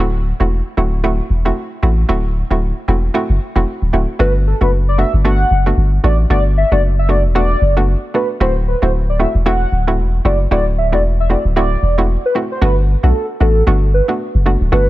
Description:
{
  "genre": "afrobeats",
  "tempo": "114 BPM",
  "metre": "4/4",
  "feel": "swing 58% on 16ths",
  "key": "G major",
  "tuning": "A4 = 440 Hz",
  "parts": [
    { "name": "hollow square pluck", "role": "accompaniment", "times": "0.0-14.9 s", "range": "A3 to F#4", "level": "-20 LUFS", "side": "right 2 dB", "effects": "chorus" },
    { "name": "punchy sub bass", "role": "bass", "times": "0.0-14.9 s", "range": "D1 to B1", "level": "-14 LUFS", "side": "equal", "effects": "none" },
    { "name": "warm velvety synth lead", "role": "melody", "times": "4.2-14.9 s", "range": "A4 to F#5", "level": "-19 LUFS", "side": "equal", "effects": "chorus, digital delay" }
  ],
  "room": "digital ambience",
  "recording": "none",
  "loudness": "-13 LUFS",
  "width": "side -16 dB against mid",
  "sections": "0.0-4.2 A section; 4.2-12.6 B section; 12.6-14.9 C section",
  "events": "none",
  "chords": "0.0 D7; 4.2 Gmaj7; 8.4 D7; 12.6 Gmaj7"
}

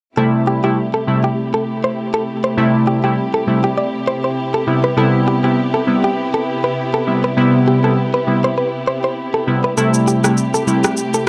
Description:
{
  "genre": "afrobeats",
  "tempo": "100 BPM",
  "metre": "4/4",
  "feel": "swing 55% on 16ths",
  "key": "A minor",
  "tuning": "A4 = 441 Hz",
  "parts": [
    { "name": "glassy digital keys", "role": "accompaniment", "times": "0.2-10.8 s", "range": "C3 to E4", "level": "-18 LUFS", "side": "equal", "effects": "chorus" },
    { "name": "warm studio string section", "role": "sustained chords", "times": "0.2-11.3 s", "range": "C3 to G4", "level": "-23 LUFS", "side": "equal", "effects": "none" },
    { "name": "direct-recorded clean electric guitar", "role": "riff", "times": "0.2-11.2 s", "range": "G4 to D5", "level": "-22 LUFS", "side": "equal", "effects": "tape echo" },
    { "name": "electronic shaker and rim click", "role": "drums", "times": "9.8-11.3 s", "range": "none", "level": "-21 LUFS", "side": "equal", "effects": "none" }
  ],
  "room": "moderate small room reverb, RT60 0.5 s",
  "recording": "dark, warm production",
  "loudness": "-16 LUFS",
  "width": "mono",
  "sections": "0.2-11.3 A section",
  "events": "none",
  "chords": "0.2 Am7; 4.7 Cmaj7; 9.8 Am7"
}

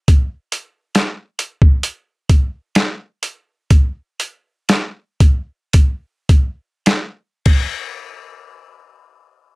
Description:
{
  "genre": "pop",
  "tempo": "48-69 BPM",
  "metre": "4/4",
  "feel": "straight",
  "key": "none",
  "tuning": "none",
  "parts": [
    { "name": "boom bap sampler-style drum kit", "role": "drums", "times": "0.1-7.7 s", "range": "crash cymbal, hi-hat, kick drum, snare drum", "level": "-12 LUFS", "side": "equal", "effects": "none" }
  ],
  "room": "little or no reverb",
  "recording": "none",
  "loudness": "-15 LUFS",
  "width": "side -26 dB against mid",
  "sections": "0.0-8.1 A section; 8.1-9.6 B section",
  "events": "slowing down 0.1-8.1",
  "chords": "none"
}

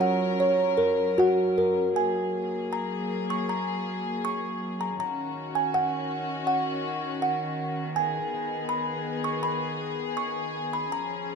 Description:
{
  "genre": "children's music, lullaby",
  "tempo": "80 BPM",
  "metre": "4/4",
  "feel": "rubato",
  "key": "F# major",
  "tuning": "A4 = 439 Hz",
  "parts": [
    { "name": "music box", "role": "melody", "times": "0.0-11.3 s", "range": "F#4 to C#6", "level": "-26 LUFS", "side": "right 1 dB", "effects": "none" },
    { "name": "warm studio string section", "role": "sustained chords", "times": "0.0-11.3 s", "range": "D#3 to A#4", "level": "-30 LUFS", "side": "left 2 dB", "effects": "none" }
  ],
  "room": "moderate recital hall reverb, RT60 1.7 s",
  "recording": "dark, warm production",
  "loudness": "-25 LUFS",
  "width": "side -6 dB against mid",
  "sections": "0.0-2.0 A section; 2.0-11.3 B section",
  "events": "none",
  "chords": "0.0 F#; 2.0 F#add9; 5.0 D#m7; 7.9 G#m"
}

